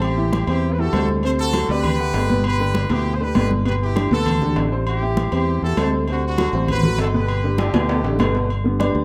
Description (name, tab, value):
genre	latin, salsa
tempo	198 BPM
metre	4/4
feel	straight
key	G major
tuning	A4 = 441 Hz
part	brilliant horn section	melody	0.0-8.3 s	D4 to C5	-28 LUFS	equal	plate reverb
part	warm upright piano	accompaniment	0.0-9.0 s	B2 to F#5	-25 LUFS	equal	none
part	fingered electric bass	bass	0.0-9.0 s	G1 to E2	-24 LUFS	equal	none
part	agogo bells and timbales	percussion	0.0-8.9 s	none	-29 LUFS	equal	none
part	congas	percussion	0.0-9.0 s	none	-28 LUFS	equal	none
room	light reverb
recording	close, detailed microphones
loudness	-20 LUFS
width	mono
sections	0.0-8.5 A section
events	drum fill 7.6-8.5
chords	0.0 Am7; 1.2 D7; 2.4 G; 4.9 Am7; 6.1 D7; 7.3 G